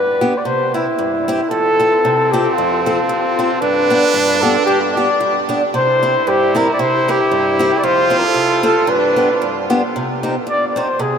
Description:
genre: alpine folk, alpine dance band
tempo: 114 BPM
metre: 2/4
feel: swing 55% on 8ths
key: F major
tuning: A4 = 438 Hz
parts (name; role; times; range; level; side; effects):
- warm flugelhorn; melody; 0.0-11.2 s; E4 to D5; -15 LUFS; left 1 dB; none
- picked old ladder-braced acoustic guitar; accompaniment; 0.0-11.2 s; F2 to A4; -20 LUFS; left 1 dB; none
- clear trumpet; second line; 1.5-9.7 s; C4 to F4; -19 LUFS; right 4 dB; none
room: wet huge ambient reverb, RT60 7.8 s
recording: in a vast, echoing space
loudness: -13 LUFS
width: side -7 dB against mid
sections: 0.0-1.5 A section; 1.5-9.9 B section; 9.9-11.2 C section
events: none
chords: 0.5 C; 1.5 F; 3.6 G; 5.7 C; 7.8 F; 8.9 G; 9.9 Cm

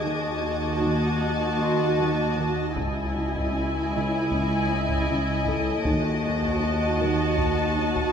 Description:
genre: cinematic, suspense film score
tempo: 78 BPM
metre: 4/4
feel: straight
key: unclear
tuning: A4 = 436 Hz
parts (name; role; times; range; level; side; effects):
- dark studio violin section; melody; 0.0-8.1 s; G#5 to A5; -32 LUFS; left 3 dB; none
- rich studio violin section; second line; 0.0-8.1 s; D#5; -31 LUFS; left 4 dB; none
- rich studio viola section; accompaniment; 0.0-8.1 s; E4 to F#4; -30 LUFS; right 2 dB; none
- flickering grainy texture; sustained chords; 0.0-8.1 s; E4 to A5; -32 LUFS; equal; built-in reverb
- dark studio cello section; riff; 0.0-8.0 s; C#3 to D#4; -32 LUFS; equal; none
- warm studio cello section; bass; 0.0-8.1 s; C#2 to D#2; -29 LUFS; left 1 dB; none
- warm studio double bass section; bass; 0.0-8.1 s; C#2 to D#2; -30 LUFS; right 2 dB; none
- concert harp; texture; 0.0-8.1 s; A4 to B#5; -37 LUFS; left 5 dB; none
- warm studio violin section; texture; 0.0-8.1 s; C#5 to D7; -41 LUFS; left 3 dB; none
- taiko ensemble; drums; 2.8-8.1 s; none; -33 LUFS; equal; none
room: wet scoring stage reverb, RT60 1.5 s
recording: none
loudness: -22 LUFS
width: side -7 dB against mid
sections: 0.0-8.1 A section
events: none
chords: 0.0 D#dim; 2.8 C#madd9; 5.9 D#dim

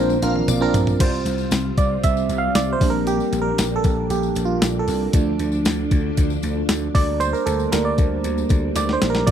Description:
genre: 1980s-style pop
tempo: 116 BPM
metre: 4/4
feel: straight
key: unclear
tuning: A4 = 441 Hz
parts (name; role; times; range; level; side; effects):
- mellow horn-like synth lead; melody; 0.0-0.7 s; C5; -26 LUFS; left 6 dB; chorus, slapback echo
- FM electric piano; accompaniment; 0.0-9.3 s; Bb2 to F5; -22 LUFS; right 5 dB; chorus
- ensemble organ-string; sustained chords; 0.0-9.3 s; F3 to F4; -27 LUFS; left 2 dB; phaser, ensemble chorus
- vintage slap bass; bass; 0.0-9.3 s; Bb1 to D2; -24 LUFS; left 1 dB; none
- clean 12-bit digital drum machine; drums; 0.1-9.3 s; crash cymbal, hi-hat, kick drum, snare drum, toms; -21 LUFS; left 1 dB; none
- tambourine; percussion; 0.1-9.3 s; none; -36 LUFS; left 20 dB; none
- shimmering bell with halo; second line; 0.2-1.0 s; D5 to F5; -30 LUFS; left 4 dB; ensemble chorus, slapback echo
room: little or no reverb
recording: dry, close 1970s-style studio recording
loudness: -18 LUFS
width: side -9 dB against mid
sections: 0.0-1.0 A section; 1.0-9.3 B section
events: drum fill 0.0-1.0, 8.8-9.3; FM electric piano solo 1.0-9.3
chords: 0.0 Bbadd9; 1.0 Csus4; 2.8 Bb6; 5.1 Dm; 6.9 Gm/D

